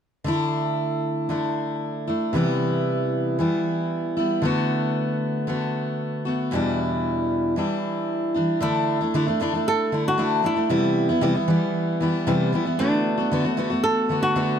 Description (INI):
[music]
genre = acoustic pop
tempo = 115 BPM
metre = 4/4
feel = straight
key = D mixolydian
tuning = A4 = 445 Hz
[part]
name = picked steel-string acoustic guitar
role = accompaniment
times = 0.2-14.6 s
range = E2 to F#4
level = -21 LUFS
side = equal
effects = none
[part]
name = flamenco guitar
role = melody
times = 8.6-14.6 s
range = D4 to A4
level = -25 LUFS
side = right 1 dB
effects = none
[sound]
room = light reverb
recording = close, detailed microphones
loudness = -21 LUFS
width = side -8 dB against mid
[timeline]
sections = 0.3-8.6 A section; 8.6-14.6 B section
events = none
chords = 0.3 Dsus2; 2.3 Cmaj7; 4.4 Bm7/D; 6.5 Em7; 8.6 Dsus2; 10.7 Cmaj7; 12.8 Bm7/D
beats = | 0.25 0.78 1.30 1.82 | 2.34 2.87 3.39 3.91 | 4.43 4.96 5.48 6.00 | 6.52 7.04 7.57 8.09 | 8.61 9.13 9.65 10.18 | 10.70 11.22 11.74 12.26 | 12.79 13.31 13.83 14.35